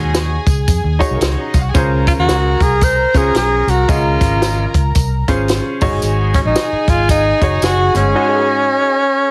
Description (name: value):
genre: uptempo 1960s-style soul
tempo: 112 BPM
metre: 4/4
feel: swing 62% on 8ths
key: Db major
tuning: A4 = 437 Hz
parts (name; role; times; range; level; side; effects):
- warm studio violin section; second line; 0.0-9.3 s; Bb3 to Bb5; -26 LUFS; equal; none
- clear grand piano; accompaniment; 0.0-8.9 s; Ab2 to Eb5; -22 LUFS; equal; none
- vintage muted fingered electric bass; bass; 0.0-8.1 s; Gb1 to F2; -20 LUFS; equal; none
- compact cocktail drum kit; drums; 0.1-8.0 s; hi-hat, kick drum, snare drum; -20 LUFS; equal; none
- tambourine; percussion; 0.1-8.0 s; none; -32 LUFS; equal; none
- breathy tenor saxophone; melody; 2.1-9.3 s; Db4 to C5; -17 LUFS; equal; slapback echo
- mellow horn section; second line; 8.2-8.4 s; Ab3 to Db5; -26 LUFS; equal; none
room: light reverb, small room ambience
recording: heavily compressed radio sound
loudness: -14 LUFS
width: mono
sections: 0.0-9.3 A section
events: band accent 8.2-9.3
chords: 0.0 Ab7sus4; 1.8 Dbmaj7; 5.8 Ab7sus4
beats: 0.15 0.68 1.22 | 1.75 2.29 2.82 3.35 | 3.89 4.42 4.95 5.49 | 6.02 6.55 7.09 7.62 | 8.16 8.69 9.22